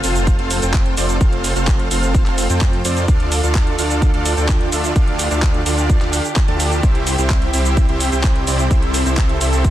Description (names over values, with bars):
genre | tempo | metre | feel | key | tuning
EDM, festival progressive house | 128 BPM | 4/4 | straight | F major | A4 = 445 Hz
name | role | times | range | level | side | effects
muted studio string section | sustained chords | 0.0-9.7 s | C3 to A4 | -26 LUFS | right 1 dB | sidechain pumping
dense compressed supersaw | riff | 0.0-9.7 s | C4 to A5 | -21 LUFS | right 1 dB | sidechain pumping, tape echo
wide detuned saw bass | bass | 0.0-9.7 s | F1 to F2 | -20 LUFS | equal | chorus, sidechain pumping
pop drum kit | drums | 0.0-9.7 s | handclaps, hi-hat, shaker | -23 LUFS | right 1 dB | none
impact | sound effects | 0.0-1.2 s | none | barely audible | none | none
electronic kick drum | drums | 0.3-9.7 s | none | -16 LUFS | equal | none
room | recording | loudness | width
little or no reverb | dense, heavily limited modern master | -14 LUFS | side -13 dB against mid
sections
0.0-9.7 A section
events
impact 0.0-1.2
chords
0.0 F; 3.1 Dm; 6.8 C